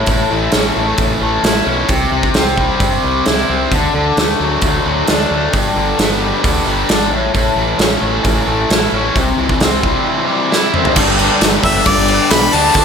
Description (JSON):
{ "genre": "classic rock", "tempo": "132 BPM", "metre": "4/4", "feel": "straight", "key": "unclear", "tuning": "A4 = 440 Hz", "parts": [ { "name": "distorted electric guitar", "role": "riff", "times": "0.0-12.8 s", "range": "G2 to E4", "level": "-14 LUFS", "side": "left 1 dB", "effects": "overdrive" }, { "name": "growling fingered electric bass", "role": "bass", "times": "0.1-12.8 s", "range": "G1 to G2", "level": "-22 LUFS", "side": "equal", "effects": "overdrive" }, { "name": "big rock drum kit", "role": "drums", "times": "0.1-12.8 s", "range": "crash cymbal, hi-hat, kick drum, snare drum, toms", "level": "-16 LUFS", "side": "right 1 dB", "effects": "none" }, { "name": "tonewheel organ", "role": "sustained chords", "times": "11.0-12.8 s", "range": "D4 to D5", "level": "-24 LUFS", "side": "equal", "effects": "none" }, { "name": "tambourine", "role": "percussion", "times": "11.0-12.8 s", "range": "none", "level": "-27 LUFS", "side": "right 7 dB", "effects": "none" }, { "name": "bright harmonica", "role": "melody", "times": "11.6-12.8 s", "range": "D5 to B5", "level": "-14 LUFS", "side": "left 1 dB", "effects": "none" } ], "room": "wet scoring stage reverb, RT60 1.7 s, studio reverb", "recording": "big arena sound", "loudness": "-12 LUFS", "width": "side -6 dB against mid", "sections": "0.0-11.0 A section; 11.0-12.8 B section", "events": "drum fill 10.5-11.0", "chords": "0.0 A; 1.9 C; 3.7 D; 5.5 G; 7.1 A; 9.2 C; 11.0 G" }